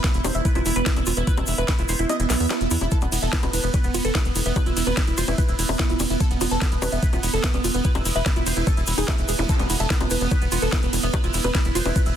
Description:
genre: psychedelic trance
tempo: 146 BPM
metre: 4/4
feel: straight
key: unclear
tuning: A4 = 439 Hz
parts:
  - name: supersaw stab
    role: melody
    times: 0.0-12.1 s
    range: B3 to E5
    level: -28 LUFS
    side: right 1 dB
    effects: phaser, sidechain pumping, tape echo
  - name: evolving wavetable pad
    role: sustained chords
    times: 0.0-12.2 s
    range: B3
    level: -29 LUFS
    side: right 6 dB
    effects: chorus, built-in reverb, phaser, sidechain pumping
  - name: woody wave-folded pluck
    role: riff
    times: 0.0-12.0 s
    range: D#4 to E5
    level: -31 LUFS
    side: moving between left 3 dB and right 4 dB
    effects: chorus, auto-pan, vintage 12-bit sampler grit, sidechain pumping, tape echo
  - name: electronic kick drum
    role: drums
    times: 0.0-12.0 s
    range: none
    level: -22 LUFS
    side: equal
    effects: none
  - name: garage drum kit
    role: drums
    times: 0.0-12.1 s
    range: bongos, hi-hat, ride cymbal, snare drum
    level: -27 LUFS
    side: left 1 dB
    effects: none
  - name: egg shaker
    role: percussion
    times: 0.0-12.1 s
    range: none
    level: -35 LUFS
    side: left 6 dB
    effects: none
  - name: tight sequencer bass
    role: bass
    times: 0.1-12.1 s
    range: E1 to E2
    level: -25 LUFS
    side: equal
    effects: none
  - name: swell and zap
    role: sound effects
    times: 2.3-2.9, 9.4-9.5 s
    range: none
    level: -34 LUFS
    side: equal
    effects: none
room: digital ambience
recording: dense, heavily limited modern master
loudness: -19 LUFS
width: side -10 dB against mid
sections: 0.0-12.2 A section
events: kick drops out 2.1-2.9; swell 2.3-2.9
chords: 0.0 E5

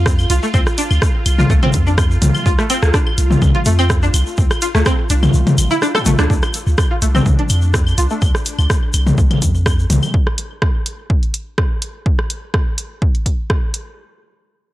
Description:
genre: minimal techno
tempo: 125 BPM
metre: 4/4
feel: swing 53% on 16ths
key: D minor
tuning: A4 = 440 Hz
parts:
  - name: punchy sub bass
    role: bass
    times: 0.0-10.0 s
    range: A1 to F2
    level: -16 LUFS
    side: equal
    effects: sidechain pumping
  - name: swarming drone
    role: texture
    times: 0.0-8.2 s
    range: D4 to F4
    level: -28 LUFS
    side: right 2 dB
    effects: built-in reverb, sidechain pumping
  - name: electronic kick drum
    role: drums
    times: 0.1-13.6 s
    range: none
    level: -16 LUFS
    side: equal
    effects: none
  - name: punchy analog drum machine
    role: drums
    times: 0.1-13.8 s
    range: hi-hat, rim click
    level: -22 LUFS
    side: right 1 dB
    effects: none
  - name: egg shaker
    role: percussion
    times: 0.1-10.1 s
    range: none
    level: -29 LUFS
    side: left 2 dB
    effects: none
  - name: organic electronic drum kit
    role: percussion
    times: 0.2-10.1 s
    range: claves, rim click, toms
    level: -18 LUFS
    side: left 1 dB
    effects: overdrive, tape echo
  - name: string-like resonator pluck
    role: riff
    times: 0.3-8.1 s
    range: A3 to A4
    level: -21 LUFS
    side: equal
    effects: ensemble chorus, sidechain pumping, analog delay
  - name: zap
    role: sound effects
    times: 5.9-6.1 s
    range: none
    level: -28 LUFS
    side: equal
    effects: none
room: little or no reverb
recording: dry, gritty hardware recording, transformer saturation, cassette tape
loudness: -13 LUFS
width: side -16 dB against mid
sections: 0.0-6.3 A section; 6.3-14.0 B section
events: drop 0.0-6.3; kick drops out 5.3-6.3; drum fill 5.8-6.3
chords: 0.0 D5; 14.0 N.C.

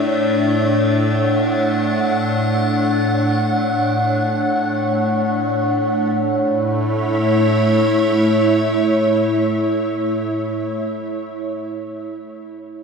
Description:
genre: ambient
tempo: free time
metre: none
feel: none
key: A major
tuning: A4 = 437 Hz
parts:
  - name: evolving wavetable pad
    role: solo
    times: 0.0-10.7 s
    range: A2 to F#5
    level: -16 LUFS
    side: equal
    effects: chorus, built-in reverb, ping-pong delay
room: wet huge ambient reverb, RT60 8.0 s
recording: none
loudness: -16 LUFS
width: side -5 dB against mid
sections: 0.0-6.2 A section; 6.2-9.9 B section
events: none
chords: 0.0 Dmaj7/A; 6.2 A

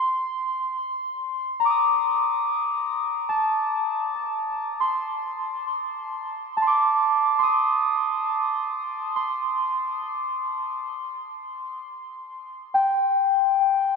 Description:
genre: ambient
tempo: free time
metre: none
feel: none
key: C dorian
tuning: A4 = 439 Hz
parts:
  - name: muted felt-like synth keys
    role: solo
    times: 0.0-14.0 s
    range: G5 to Eb6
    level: -22 LUFS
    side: equal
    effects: chorus, ping-pong delay
room: wet plate reverb, RT60 3.7 s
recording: dreamy mix soaked in reverb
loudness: -22 LUFS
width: side -4 dB against mid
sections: 0.0-4.0 A section; 4.0-14.0 B section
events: none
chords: 0.0 Eb5; 10.9 N.C.

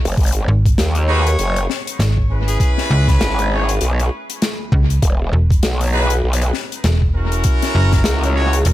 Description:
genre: glitch hop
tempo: 99 BPM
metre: 4/4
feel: swing 59% on 16ths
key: G# minor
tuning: A4 = 439 Hz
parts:
  - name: growl bass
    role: bass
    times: 0.1-8.6 s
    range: E1 to D#2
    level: -17 LUFS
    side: equal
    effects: chorus
  - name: big rock drum kit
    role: drums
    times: 0.1-8.7 s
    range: hi-hat, snare drum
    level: -24 LUFS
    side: left 3 dB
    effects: dub echo
  - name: electronic kick drum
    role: drums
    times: 0.2-8.0 s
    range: none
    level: -16 LUFS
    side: equal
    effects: none
  - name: slap-like FM bass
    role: bass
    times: 0.5-8.7 s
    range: E1 to C#2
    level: -15 LUFS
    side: equal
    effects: tube saturation
  - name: warm harmonica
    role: melody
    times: 1.1-3.5 s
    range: G#4 to C#5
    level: -27 LUFS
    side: left 1 dB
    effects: dub echo
  - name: clear horn section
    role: stabs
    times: 1.1-8.6 s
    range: C#4 to C#5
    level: -23 LUFS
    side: equal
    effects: sidechain pumping, dub echo
  - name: swell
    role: sound effects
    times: 8.7 s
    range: none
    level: barely audible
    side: none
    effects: none
room: studio reverb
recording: echo-heavy mix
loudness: -14 LUFS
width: side -15 dB against mid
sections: 0.0-8.7 A section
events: none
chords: 0.2 G#m7; 2.6 C#m7; 5.0 E5; 7.4 F#7

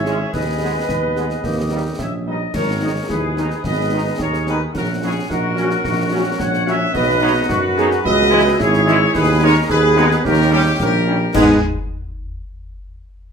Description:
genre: military-style march for wind band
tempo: 109 BPM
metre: 2/4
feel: straight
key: G# minor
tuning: A4 = 440 Hz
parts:
  - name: mellow trumpet section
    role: melody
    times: 0.0-11.6 s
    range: G4 to F#5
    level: -22 LUFS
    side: left 1 dB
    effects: none
  - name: dark euphonium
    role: second line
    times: 0.0-10.9 s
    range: A#3 to G#4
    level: -24 LUFS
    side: right 3 dB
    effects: none
  - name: large flute ensemble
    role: second line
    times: 0.0-11.7 s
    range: D#4 to G#5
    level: -23 LUFS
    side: left 1 dB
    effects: none
  - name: warm woodwind section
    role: second line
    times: 0.0-11.6 s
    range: F#4 to F#5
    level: -28 LUFS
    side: equal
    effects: none
  - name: mellow tuba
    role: bass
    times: 0.0-11.6 s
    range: G#1 to G#2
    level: -19 LUFS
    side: right 2 dB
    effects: none
  - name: dark French horn section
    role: accompaniment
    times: 0.1-11.6 s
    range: E3 to G#4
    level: -22 LUFS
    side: left 2 dB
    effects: none
  - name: clear trombone section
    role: sustained chords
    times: 0.1-11.6 s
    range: D#3 to E4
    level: -24 LUFS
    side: right 2 dB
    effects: none
  - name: concert snare drum, clash cymbals and concert bass drum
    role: drums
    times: 0.1-11.7 s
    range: none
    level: -27 LUFS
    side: left 1 dB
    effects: none
room: wet large studio reverb, RT60 0.8 s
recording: minimal, uncompressed stereo recording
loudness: -15 LUFS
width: side -6 dB against mid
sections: 0.0-11.3 A section; 11.3-12.4 B section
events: none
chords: 0.3 G#m/D#; 1.4 D#; 2.5 G#m; 4.7 F#/A#; 6.9 B; 8.0 C#m; 9.1 G#m/D#; 10.2 D#7; 11.3 G#m

